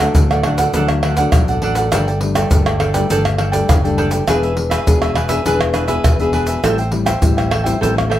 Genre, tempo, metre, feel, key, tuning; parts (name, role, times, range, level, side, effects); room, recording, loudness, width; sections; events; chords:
samba and choro; 102 BPM; 4/4; straight; G major; A4 = 440 Hz
cavaquinho; accompaniment; 0.0-8.2 s; D4 to G5; -20 LUFS; right 3 dB
nylon-string guitar; accompaniment; 0.0-8.2 s; G2 to G#4; -21 LUFS; left 5 dB
fingered electric bass; bass; 0.0-8.2 s; E1 to D2; -20 LUFS; equal
egg shaker, surdo, pandeiro and tamborim; percussion; 0.1-8.2 s; -17 LUFS; equal
moderate large studio reverb, RT60 0.9 s; -13 LUFS; side -12 dB against mid
0.0-8.2 A section
0.0 D; 1.9 Gsus2; 4.3 E7; 6.6 Am7